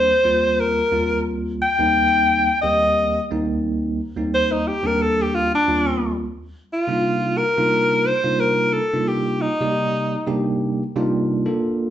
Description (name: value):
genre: jazz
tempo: 88 BPM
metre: 4/4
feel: swing 54% on 16ths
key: unclear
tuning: A4 = 440 Hz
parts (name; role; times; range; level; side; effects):
- bright alto saxophone; melody; 0.0-10.4 s; D4 to G5; -18 LUFS; left 1 dB; none
- bell-like tine electric piano; accompaniment; 0.0-11.9 s; Eb2 to D5; -22 LUFS; right 1 dB; medium stereo tremolo
room: wet large studio reverb, RT60 0.9 s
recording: band playing live in one room, nothing above 7.9 kHz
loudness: -18 LUFS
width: side -11 dB against mid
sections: 0.0-6.4 A section; 6.4-11.9 B section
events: alto saxophone solo 0.0-6.4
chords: 0.0 Eb6; 6.4 Cm11